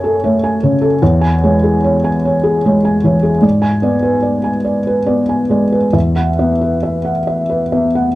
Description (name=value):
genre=neoclassical minimalist piano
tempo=67-76 BPM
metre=3/4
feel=rubato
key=unclear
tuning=A4 = 442 Hz
part: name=felt-muted upright piano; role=solo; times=0.0-8.2 s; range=E2 to G#5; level=-12 LUFS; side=equal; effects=none
room=small room ambience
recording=dry, close 1970s-style studio recording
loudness=-12 LUFS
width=side -16 dB against mid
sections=0.0-8.2 A section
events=none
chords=0.0 F#madd9; 1.0 C#m/E; 3.4 G#dim; 5.9 Esus2